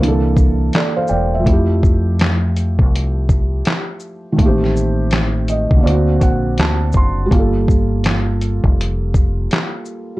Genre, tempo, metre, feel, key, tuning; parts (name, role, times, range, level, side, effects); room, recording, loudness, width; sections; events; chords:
lo-fi hip hop; 82 BPM; 4/4; swing 65% on 16ths; A4 = 440 Hz
felt-muted upright piano; accompaniment; 0.0-10.2 s; D3 to C6; -19 LUFS; right 1 dB; cassette tape
deep dub fingered electric bass; bass; 0.0-9.5 s; E1 to F2; -18 LUFS; equal
lo-fi sampler-style drum kit; drums; 0.0-10.1 s; handclaps, hi-hat, kick drum, shaker, snare drum; -16 LUFS; equal
light reverb; dark, warm production; -13 LUFS; side -18 dB against mid
0.0-10.2 A section
0.0 C13; 1.5 Fmaj9; 4.4 Am7b5; 5.8 D7b13; 7.3 Gm9